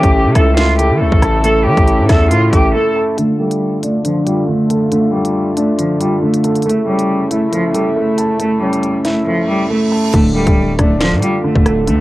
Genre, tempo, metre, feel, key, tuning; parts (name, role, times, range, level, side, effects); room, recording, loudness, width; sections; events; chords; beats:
hip hop, drill; 138 BPM; 4/4; half-time; D harmonic minor; A4 = 440 Hz
rich cello; melody; 0.0-12.0 s; F3 to A4; -16 LUFS; equal; low-pass filter
dark baby grand piano; accompaniment; 0.0-12.0 s; D3 to A5; -16 LUFS; right 1 dB; low-pass filter, cassette tape
warm brass ensemble; sustained chords; 0.0-10.1 s; C#3 to F4; -22 LUFS; left 1 dB; stereo widening, low-pass filter, cassette tape
distorted 808-style bass; bass; 0.0-2.7, 10.1-12.0 s; D1 to E3; -16 LUFS; equal; distortion
drill drum kit; drums; 0.0-12.0 s; crash cymbal, finger snaps, hi-hat, kick drum, rim click, snare drum; -15 LUFS; equal; cassette tape
reverse cymbal; sound effects; 9.4-10.1 s; -27 LUFS; right 5 dB
light reverb; home recording on cassette; -11 LUFS; side -17 dB against mid
0.0-3.2 A section; 3.2-10.1 B section; 10.1-12.0 C section
break 2.7-3.2; filter sweep 3.2-10.1; reverse cymbal 9.4-10.1
0.0 A; 3.2 Dm; 6.7 A; 10.1 Dm
0.14 0.57 1.01 | 1.44 1.88 2.31 2.75 | 3.18 3.61 4.05 4.48 | 4.92 5.35 5.79 6.22 | 6.66 7.09 7.53 7.96 | 8.40 8.83 9.27 9.70 | 10.14 10.57 11.01 11.44 | 11.88